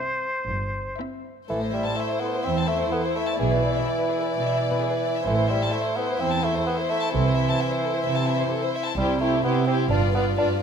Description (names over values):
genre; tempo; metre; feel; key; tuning
quick classical-period movement for symphony orchestra; 128 BPM; 4/4; rubato; A minor; A4 = 440 Hz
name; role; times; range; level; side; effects
rich chamber violin section; melody; 0.0-10.6 s; C5 to E5; -33 LUFS; left 6 dB; none
clear oboe; second line; 0.0-1.0 s; C5; -28 LUFS; left 1 dB; none
warm chamber violin section; second line; 0.0-10.6 s; E4 to A5; -30 LUFS; left 4 dB; none
rich chamber viola section; accompaniment; 0.0-10.6 s; C4 to F4; -30 LUFS; equal; none
rich chamber double bass section; bass; 0.5-10.3 s; G1 to C2; -29 LUFS; right 2 dB; none
warm chamber cello section; bass; 0.5-10.6 s; E2 to C3; -28 LUFS; right 3 dB; none
clear bassoon; accompaniment; 1.5-10.5 s; E3 to D4; -26 LUFS; right 1 dB; none
room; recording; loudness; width
moderate concert hall reverb, RT60 1.9 s; none; -21 LUFS; side -7 dB against mid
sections
0.0-1.5 A section; 1.5-10.6 B section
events
none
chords
0.0 C; 1.5 Am; 3.4 E7(no3)/B; 5.3 Am; 7.1 Am/C; 9.0 C; 9.9 G7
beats
0.49 1.00 | 1.49 1.97 2.45 2.92 | 3.39 3.87 4.34 4.81 | 5.27 5.73 6.20 6.67 | 7.13 7.59 8.05 8.52 | 8.98 9.45 9.91 10.38